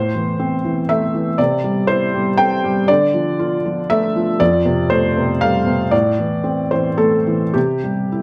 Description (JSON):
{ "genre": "neoclassical minimalist piano", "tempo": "119 BPM", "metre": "3/4", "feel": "rubato", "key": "unclear", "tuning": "A4 = 440 Hz", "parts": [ { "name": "felt-muted upright piano", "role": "solo", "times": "0.0-8.2 s", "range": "F2 to G5", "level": "-17 LUFS", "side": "equal", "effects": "slapback echo" } ], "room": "light reverb", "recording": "none", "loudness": "-17 LUFS", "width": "mono", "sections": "0.0-8.2 A section", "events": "none", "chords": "0.0 Am; 1.4 C; 2.9 Dm; 4.4 Fadd9; 5.9 Am; 7.6 C" }